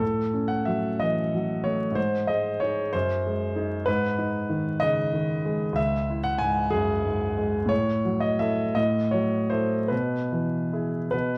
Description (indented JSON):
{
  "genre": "classical, romantic character piece for solo piano",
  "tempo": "48-65 BPM (dotted quarters)",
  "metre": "6/8",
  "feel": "rubato",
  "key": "E major from 3.9 s",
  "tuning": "A4 = 444 Hz",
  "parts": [
    { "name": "clear grand piano", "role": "solo", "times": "0.0-11.4 s", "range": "C#2 to G#5", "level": "-26 LUFS", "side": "equal", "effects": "none" }
  ],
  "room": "light reverb",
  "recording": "vinyl crackle",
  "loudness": "-26 LUFS",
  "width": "mono",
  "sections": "0.0-11.4 A section",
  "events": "none",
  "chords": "0.0 F#m/A; 2.0 G#5; 2.9 G#7/F#; 3.9 G#m; 5.8 C#m; 7.7 F#m7/A; 9.9 E/B",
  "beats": "| 0.01 1.01 | 1.97 2.94 | 3.88 4.82 | 5.78 6.72 | 7.71 8.77 | 9.92 11.13"
}